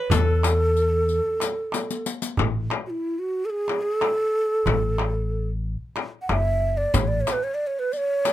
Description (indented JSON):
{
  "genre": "Turkish makam ensemble",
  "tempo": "184 BPM (eighths)",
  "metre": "7/8",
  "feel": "straight",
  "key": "A makam rast",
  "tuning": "A4 = 440 Hz",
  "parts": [
    { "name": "breathy mellow ney", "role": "melody", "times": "0.0-8.3 s", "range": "E4 to F#5", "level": "-24 LUFS", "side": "right 1 dB", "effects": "none" },
    { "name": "qanun", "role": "second line", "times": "0.0-2.0 s", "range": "A4 to C#5", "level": "-32 LUFS", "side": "left 2 dB", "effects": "none" },
    { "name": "upright bass", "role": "bass", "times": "0.1-7.2 s", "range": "F#1 to E2", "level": "-24 LUFS", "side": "left 1 dB", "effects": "none" },
    { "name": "darbuka", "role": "percussion", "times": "0.1-8.3 s", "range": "none", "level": "-28 LUFS", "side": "right 2 dB", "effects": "none" },
    { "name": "frame drum", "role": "percussion", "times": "0.1-8.3 s", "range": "none", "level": "-28 LUFS", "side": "left 8 dB", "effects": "none" },
    { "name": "riq", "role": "percussion", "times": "0.1-2.4, 6.9-8.3 s", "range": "none", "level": "-31 LUFS", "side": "left 6 dB", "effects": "none" }
  ],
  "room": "little or no reverb",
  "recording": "close, detailed microphones",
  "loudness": "-22 LUFS",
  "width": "side -13 dB against mid",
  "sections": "0.0-2.4 A section; 2.4-8.3 B section",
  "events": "drum fill 1.7-2.4",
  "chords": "none",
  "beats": "| 0.11 0.44 0.76 1.09 1.42 1.74 2.06 | 2.39 2.72 3.04 3.37 3.69 4.02 4.34 | 4.67 4.99 5.32 5.64 5.97 6.29 6.62 | 6.95 7.27 7.60 7.92 8.25"
}